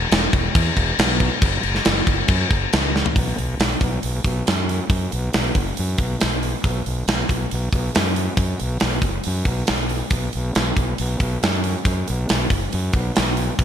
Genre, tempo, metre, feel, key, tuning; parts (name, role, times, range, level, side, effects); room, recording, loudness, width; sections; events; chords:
hard rock; 138 BPM; 4/4; straight; A4 = 440 Hz
fuzz fingered electric bass; bass; 0.0-13.6 s; E1 to F#2; -23 LUFS; equal; overdrive
tight metal drum kit; drums; 0.1-13.6 s; crash cymbal, hi-hat, kick drum, snare drum, toms; -20 LUFS; equal; gated reverb
light reverb; bright 1980s-style digital production; -18 LUFS; side -9 dB against mid
0.0-3.2 A section; 3.2-13.6 B section
drum fill 2.9